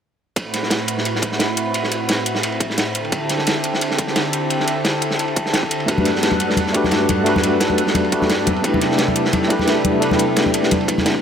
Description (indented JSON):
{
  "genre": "liquid drum and bass",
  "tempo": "174 BPM",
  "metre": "4/4",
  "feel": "swing 53% on 16ths",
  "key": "A dorian",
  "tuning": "A4 = 440 Hz",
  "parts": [
    { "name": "lush unison pad", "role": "sustained chords", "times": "0.4-11.2 s", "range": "G2 to F#5", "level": "-22 LUFS", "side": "right 1 dB", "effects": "chorus, sidechain pumping" },
    { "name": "crunchy breakbeat drum kit", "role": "drums", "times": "0.4-11.1 s", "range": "ride cymbal, snare drum", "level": "-22 LUFS", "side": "right 1 dB", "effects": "high-pass filter on cymbals, high-pass filter on snare, high-pass filter on room" },
    { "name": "electronic hi-hat", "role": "drums", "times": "0.4-11.1 s", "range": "none", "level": "-24 LUFS", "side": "left 1 dB", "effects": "overdrive" },
    { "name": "electronic kick drum", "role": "drums", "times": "0.4-11.2 s", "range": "none", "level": "-24 LUFS", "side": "right 1 dB", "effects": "overdrive, high-pass filter on kick" },
    { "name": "tine electric piano", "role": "accompaniment", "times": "5.9-11.2 s", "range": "A3 to B4", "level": "-19 LUFS", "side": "left 1 dB", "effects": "medium tremolo, tape echo" },
    { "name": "congas", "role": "percussion", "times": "6.0-11.0 s", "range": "none", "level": "-22 LUFS", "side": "left 2 dB", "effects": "none" }
  ],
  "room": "moderate lush hall reverb, RT60 2.1 s",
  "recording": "none",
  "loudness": "-16 LUFS",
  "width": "side -8 dB against mid",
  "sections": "0.4-11.2 A section",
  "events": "none",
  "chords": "0.4 Am69; 3.0 D9sus4; 5.9 Gmaj9; 8.5 Cmaj13"
}